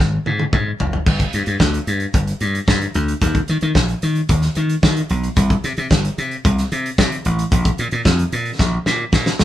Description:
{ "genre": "disco", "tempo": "112 BPM", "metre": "4/4", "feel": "straight", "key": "unclear", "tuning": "A4 = 441 Hz", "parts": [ { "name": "slap bass", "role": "bass", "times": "0.0-9.4 s", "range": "F#1 to Eb3", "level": "-18 LUFS", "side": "equal", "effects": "none" }, { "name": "warm soul drum kit", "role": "drums", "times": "0.0-9.4 s", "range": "crash cymbal, hi-hat, kick drum, snare drum, toms", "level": "-18 LUFS", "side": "equal", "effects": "none" } ], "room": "moderate studio ambience, RT60 0.5 s", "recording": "band playing live in one room, lossy compression artefacts", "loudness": "-16 LUFS", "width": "side -13 dB against mid", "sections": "0.0-1.1 A section; 1.1-9.4 B section", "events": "drum fill 0.0-1.1, 8.6-9.4", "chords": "none" }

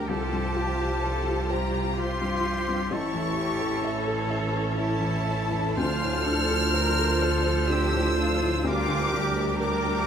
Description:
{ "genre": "cinematic, emotional film score for orchestra", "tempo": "63 BPM", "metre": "3/4", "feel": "rubato", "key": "D minor", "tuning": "A4 = 439 Hz", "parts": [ { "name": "rich studio violin section", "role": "melody", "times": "0.0-10.1 s", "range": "A5 to F6", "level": "-31 LUFS", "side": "left 2 dB", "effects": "none" }, { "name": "clear oboe", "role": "second line", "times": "0.0-10.1 s", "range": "G4 to C5", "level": "-34 LUFS", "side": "right 1 dB", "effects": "none" }, { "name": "mellow clarinet", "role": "second line", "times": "0.0-10.1 s", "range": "E4 to G4", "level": "-34 LUFS", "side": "equal", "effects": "none" }, { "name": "rich studio violin section", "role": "second line", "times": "0.0-10.1 s", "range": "G4 to C#5", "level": "-35 LUFS", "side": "left 3 dB", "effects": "none" }, { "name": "felt-muted upright piano", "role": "accompaniment", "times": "0.0-10.1 s", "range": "A1 to E5", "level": "-31 LUFS", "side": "left 3 dB", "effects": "none" }, { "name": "rich studio viola section", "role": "accompaniment", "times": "0.0-10.1 s", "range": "E3 to F4", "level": "-34 LUFS", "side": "right 2 dB", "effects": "none" }, { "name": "rich studio double bass section", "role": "bass", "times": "0.0-10.1 s", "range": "A1 to D2", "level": "-29 LUFS", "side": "right 3 dB", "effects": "none" }, { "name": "warm studio cello section", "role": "bass", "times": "0.0-10.1 s", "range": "E4 to Bb4", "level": "-33 LUFS", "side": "equal", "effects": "none" } ], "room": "light reverb", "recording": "close, detailed microphones", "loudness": "-23 LUFS", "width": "side -8 dB against mid", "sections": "0.0-10.1 A section", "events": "none", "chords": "0.1 Csus4; 2.9 A; 5.8 Dm7; 8.7 Gm/D" }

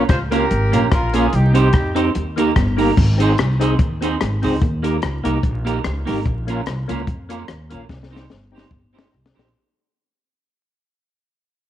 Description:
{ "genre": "ska", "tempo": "146 BPM", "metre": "4/4", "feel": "swing 54% on 8ths", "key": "unclear", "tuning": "A4 = 440 Hz", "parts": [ { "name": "semi-hollow electric guitar", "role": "accompaniment", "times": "0.0-9.5 s", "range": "Bb3 to C5", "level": "-22 LUFS", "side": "right 6 dB", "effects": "none" }, { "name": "percussive tonewheel organ", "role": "stabs", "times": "0.0-9.5 s", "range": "Bb3 to Ab4", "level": "-25 LUFS", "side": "left 7 dB", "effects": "overdrive, chorus vibrato, slow rotary speaker" }, { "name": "upright bass", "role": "bass", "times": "0.0-9.5 s", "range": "G1 to F2", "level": "-20 LUFS", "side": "equal", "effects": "none" }, { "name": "warm horn section", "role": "melody", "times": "0.1-1.9 s", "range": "Eb4 to C5", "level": "-23 LUFS", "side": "equal", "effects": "none" }, { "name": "compact cocktail drum kit", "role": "drums", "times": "0.1-9.5 s", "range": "crash cymbal, hi-hat, kick drum, rim click, snare drum", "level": "-20 LUFS", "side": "left 1 dB", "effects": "none" } ], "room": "light reverb, small room ambience", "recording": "1960s-style stereo with parts hard left and right, vinyl crackle", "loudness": "-16 LUFS", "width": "side -12 dB against mid", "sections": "0.0-3.0 A section; 3.0-9.5 B section", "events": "fade-out 3.0-9.5; drum fill 7.9-9.5", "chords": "0.0 Bbm; 1.3 Cm; 2.1 Eb; 3.0 Ab; 4.6 Eb; 6.3 Bbm; 7.9 Cm" }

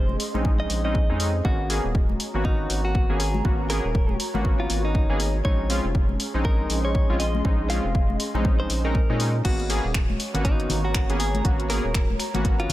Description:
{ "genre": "deep house", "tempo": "120 BPM", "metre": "4/4", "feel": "swing 59% on 16ths", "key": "unclear", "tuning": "A4 = 438 Hz", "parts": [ { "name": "direct-recorded clean electric guitar", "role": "melody", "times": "0.0-12.7 s", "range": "D#4 to E#5", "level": "-32 LUFS", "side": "equal", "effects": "analog delay" }, { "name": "round analog bass", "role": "bass", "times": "0.0-12.7 s", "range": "D#1 to A#2", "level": "-26 LUFS", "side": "equal", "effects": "sidechain pumping" }, { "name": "airy breathy pad", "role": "texture", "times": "0.0-12.7 s", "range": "C#4 to B#5", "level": "-34 LUFS", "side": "equal", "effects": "chorus, sidechain pumping" }, { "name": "congas", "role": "percussion", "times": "0.1-12.7 s", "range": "none", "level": "-32 LUFS", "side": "left 3 dB", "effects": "none" }, { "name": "punchy analog drum machine", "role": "drums", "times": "0.2-12.7 s", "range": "crash cymbal, finger snaps, hi-hat", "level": "-31 LUFS", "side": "left 1 dB", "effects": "none" }, { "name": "warm analog keys", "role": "stabs", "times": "0.3-12.7 s", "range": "G#3 to G#4", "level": "-29 LUFS", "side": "equal", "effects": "chorus, sidechain pumping, low-pass filter, analog delay" }, { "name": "electronic kick drum", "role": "drums", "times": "0.4-12.6 s", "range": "none", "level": "-23 LUFS", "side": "equal", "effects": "none" } ], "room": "little or no reverb", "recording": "none", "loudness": "-21 LUFS", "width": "side -15 dB against mid", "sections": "0.0-12.7 A section", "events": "none", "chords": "0.0 A#m11; 1.4 G#m11; 5.4 A#m11; 9.4 G#m11" }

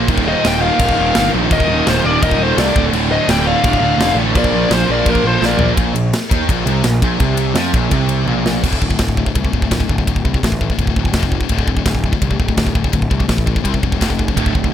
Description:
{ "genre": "heavy metal", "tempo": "168 BPM", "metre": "4/4", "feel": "straight", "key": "D phrygian", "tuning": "A4 = 443 Hz", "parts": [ { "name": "rich studio string section", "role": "sustained chords", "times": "0.0-5.8 s", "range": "D3 to C5", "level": "-30 LUFS", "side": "equal", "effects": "none" }, { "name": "heavy high-gain guitar", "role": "riff", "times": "0.0-14.7 s", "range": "D2 to C4", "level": "-22 LUFS", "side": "left 14 dB", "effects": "distortion" }, { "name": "heavy high-gain guitar", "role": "riff", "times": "0.0-5.8 s", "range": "D2 to Bb3", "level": "-24 LUFS", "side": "right 1 dB", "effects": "distortion" }, { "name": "sludgy distorted guitar", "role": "riff", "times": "0.0-8.6, 14.4-14.7 s", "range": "D2 to Bb3", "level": "-20 LUFS", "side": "right 12 dB", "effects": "overdrive" }, { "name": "fuzz picked electric bass", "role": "bass", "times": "0.0-14.7 s", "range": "D1 to F2", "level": "-19 LUFS", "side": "equal", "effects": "overdrive" }, { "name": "tight metal drum kit", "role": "drums", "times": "0.1-14.7 s", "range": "crash cymbal, kick drum, ride cymbal, snare drum, toms", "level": "-18 LUFS", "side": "equal", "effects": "none" }, { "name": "bluesy overdriven lead guitar", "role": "melody", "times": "0.3-5.7 s", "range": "Bb4 to G5", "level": "-18 LUFS", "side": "left 3 dB", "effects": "distortion, ping-pong delay" }, { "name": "high-gain lead guitar", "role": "second line", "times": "0.3-5.7 s", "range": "F4 to Eb5", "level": "-26 LUFS", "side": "right 2 dB", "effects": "distortion" } ], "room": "studio reverb", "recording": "none", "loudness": "-13 LUFS", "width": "side -10 dB against mid", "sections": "0.0-5.8 A section; 5.8-8.6 B section; 8.6-14.7 C section", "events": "drum fill 5.4-5.8, 8.3-8.6", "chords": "0.1 Eb5; 2.8 Dm; 4.4 Bb; 5.8 Bb5; 8.6 D5; 11.1 F5; 11.5 D5; 13.7 C5; 14.0 F5" }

